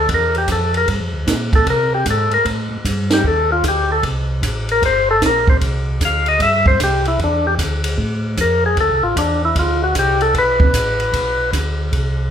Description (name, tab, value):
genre	soul jazz organ trio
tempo	152 BPM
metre	4/4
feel	swing 65% on 8ths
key	C mixolydian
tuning	A4 = 441 Hz
part	percussive tonewheel organ	melody	0.0-11.5 s	D4 to F5	-16 LUFS	left 2 dB	slow rotary speaker
part	mellow tonewheel organ	bass	0.0-12.3 s	G1 to C3	-21 LUFS	equal	overdrive, chorus vibrato, slow rotary speaker
part	compact cocktail drum kit	drums	0.1-12.0 s	hi-hat, kick drum, ride cymbal, snare drum	-20 LUFS	right 1 dB	none
room	light reverb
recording	band playing live in one room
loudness	-14 LUFS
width	side -9 dB against mid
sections	0.0-12.3 A section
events	tonewheel organ solo 0.0-12.3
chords	0.0 C7 (rootless); 0.9 Gm7; 1.7 Abmaj9; 2.5 Dsus4; 4.0 Csus2; 7.2 Dsus2; 8.0 Fadd11; 8.8 D5; 10.3 Asus24